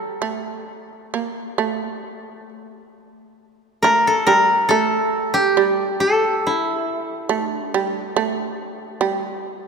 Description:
japanese traditional, Japanese chamber music; 64-72 BPM; 4/4; rubato; A4 = 440 Hz
koto; melody; 0.0-8.7 s; E4 to Bb4; -18 LUFS; equal
shamisen; second line; 0.0-9.7 s; G3 to Bb3; -23 LUFS; right 6 dB
wet church reverb, RT60 3.4 s; -18 LUFS; side -5 dB against mid
0.0-2.9 A section; 2.9-9.7 B section
0.20 1.09 2.01 | 2.92 3.81 4.69 5.57 | 6.44 7.30 8.16 9.01

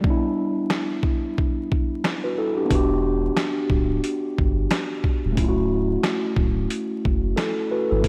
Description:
hip hop, boom-bap hip-hop; 90 BPM; 4/4; swing 60% on 16ths; A4 = 438 Hz
mellow tine electric piano; accompaniment; 0.0-8.1 s; G3 to B4; -26 LUFS; equal; cassette tape
boom bap sampler-style drum kit; drums; 0.0-8.1 s; hi-hat, kick drum, snare drum; -26 LUFS; equal
soft dub sub bass; bass; 2.7-8.1 s; D1 to G#1; -27 LUFS; equal
moderate lush hall reverb, RT60 2.2 s; dreamy mix soaked in reverb, vinyl crackle; -23 LUFS; mono
0.0-8.1 A section
break 0.0-2.7
0.0 Gmaj13; 2.7 Em7; 5.4 Dmaj7
| 0.04 0.71 1.37 2.04 | 2.71 3.37 4.04 4.71 | 5.37 6.04 6.71 7.37 | 8.04

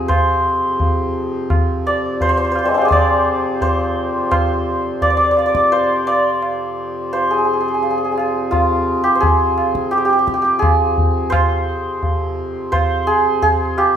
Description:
indian classical, Hindustani; 86 BPM; 4/4; straight; F raga shivaranjani; A4 = 439 Hz
santur; melody; 0.0-14.0 s; G3 to D5; -16 LUFS; equal
hand-pumped harmonium; drone; 0.0-14.0 s; F2 to C3; -24 LUFS; equal
tabla; percussion; 0.1-14.0 s; -20 LUFS; right 1 dB
wet large studio reverb, RT60 1.1 s; band playing live in one room; -14 LUFS; side -9 dB against mid
0.0-11.3 A section; 11.3-14.0 B section
| 0.09 0.80 1.50 2.20 | 2.91 3.61 4.31 5.01 | 5.72 6.42 7.12 7.82 | 8.52 9.22 9.93 10.63 | 11.33 12.03 12.72 13.43

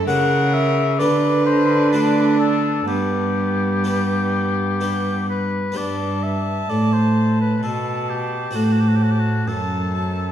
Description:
classical, baroque-style sonata movement with continuo; 64 BPM; 3/4; uneven beats, rubato; G major; A4 = 439 Hz
rich violin; second line; 0.0-10.3 s; B3 to A5; -25 LUFS; right 3 dB
harpsichord; accompaniment; 0.0-10.3 s; F#2 to G4; -23 LUFS; equal
rich cello; bass; 0.0-10.3 s; F#2 to D3; -21 LUFS; right 1 dB
warm oboe; melody; 0.1-10.3 s; F#4 to F#5; -24 LUFS; left 5 dB
wet scoring stage reverb, RT60 1.7 s; dark, warm production; -17 LUFS; side -10 dB against mid
0.0-5.8 A section; 5.8-10.3 B section
0.1 F#7/C#; 1.0 G/D; 1.9 D; 2.9 G; 8.6 F#dim/A
| 0.09 1.00 1.93 | 2.89 3.85 4.81 | 5.77 6.70 7.63 | 8.56 9.48

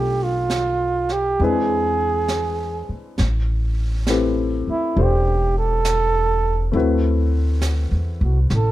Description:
jazz ballad; 67 BPM; 4/4; swing 67% on 8ths; A minor; A4 = 444 Hz
mellow flugelhorn; melody; 0.0-8.7 s; E4 to A4; -21 LUFS; right 3 dB; plate reverb
warm baby grand piano; accompaniment; 0.0-8.7 s; G#3 to C5; -25 LUFS; left 4 dB
upright bass; bass; 0.0-8.7 s; E1 to E2; -20 LUFS; equal
jazz brush drum kit; drums; 0.5-8.7 s; brushed snare drum, hi-hat, snare drum; -29 LUFS; right 2 dB
little or no reverb; dark, warm production; -18 LUFS; side -15 dB against mid
0.0-3.2 A section; 3.2-8.7 B section
flugelhorn solo 3.2-8.7
0.0 Bm7b5; 1.4 E7b13; 3.2 Am9; 6.7 D13
0.50 1.39 2.29 | 3.19 4.08 4.97 5.86 | 6.74 7.63 8.51

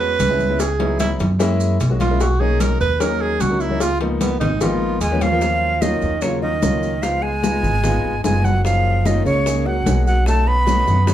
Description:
Afro-Cuban jazz; 149 BPM; 4/4; straight; Eb minor from 5.4 s; A4 = 441 Hz
breathy tenor saxophone; second line; 0.0-11.1 s; Db3 to B4; -23 LUFS; right 3 dB
warm upright piano; accompaniment; 0.0-11.1 s; E#3 to Ab4; -24 LUFS; left 3 dB
upright bass; bass; 0.0-11.1 s; Gb1 to F#2; -20 LUFS; equal
congas; percussion; 0.0-11.1 s; -26 LUFS; left 1 dB
cowbell and bongos; percussion; 0.2-11.1 s; -28 LUFS; left 3 dB
maracas; percussion; 0.2-11.1 s; -34 LUFS; right 5 dB
breathy bright concert flute; melody; 5.0-11.1 s; Db5 to B5; -21 LUFS; right 2 dB
wet club reverb, RT60 0.6 s; heard from further back in the room; -16 LUFS; side -11 dB against mid
0.0-5.4 A section; 5.4-11.1 B section
tenor saxophone solo 0.0-5.4
0.0 Amaj9 (rootless); 0.6 C#m11; 1.4 F#7; 2.2 Bmaj9; 3.8 C#13; 5.4 Ebm7; 7.0 Db7; 8.6 Gb6; 10.3 B7
0.20 | 0.60 1.00 1.40 1.80 | 2.21 2.61 3.01 3.41 | 3.81 4.21 4.61 5.02 | 5.42 5.82 6.22 6.63 | 7.03 7.44 7.84 8.24 | 8.65 9.05 9.46 9.86 | 10.27 10.67 11.07

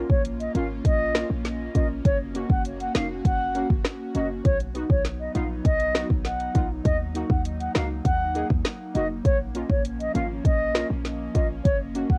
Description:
dancehall; 100 BPM; 4/4; straight; A4 = 440 Hz
synth brass stab; accompaniment; 0.0-12.1 s; Bb3 to Ab4; -33 LUFS; equal; chorus, sidechain pumping, cassette tape
airy breathy pad; sustained chords; 0.1-12.2 s; F3 to Gb4; -37 LUFS; equal; chorus, cassette tape
short 808-style bass; bass; 0.0-12.2 s; F1 to Eb2; -32 LUFS; equal
wooden flute; melody; 0.1-12.2 s; Db5 to Gb5; -30 LUFS; equal; cassette tape, tape echo
afro-pop drum kit; drums; 0.1-12.2 s; hi-hat, kick drum, rim click, snare drum; -26 LUFS; equal; cassette tape
little or no reverb; home recording on cassette; -25 LUFS; mono
0.0-12.2 A section
0.0 Bbm; 2.1 Gb; 4.5 B; 6.9 Ebm; 9.3 Bbm; 11.7 Gb
0.25 0.85 1.45 | 2.05 2.65 3.25 3.85 | 4.45 5.05 5.65 6.25 | 6.85 7.45 8.05 8.65 | 9.25 9.85 10.45 11.05 | 11.65

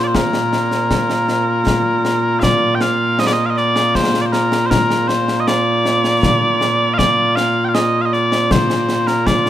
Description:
scottish traditional, Scottish pipe music; 79 BPM; 3/4; straight; Bb major; A4 = 440 Hz
mellow small bagpipes; melody; 0.0-9.5 s; Bb2 to G5; -14 LUFS; equal
concert snare drum and concert bass drum; drums; 0.1-9.5 s; -20 LUFS; left 1 dB
light reverb; minimal, uncompressed stereo recording; -14 LUFS; side -11 dB against mid
0.0-2.4 A section; 2.4-9.5 A section
| 0.15 0.91 1.67 | 2.43 3.19 3.95 | 4.71 5.46 6.22 | 6.98 7.74 8.50 | 9.26

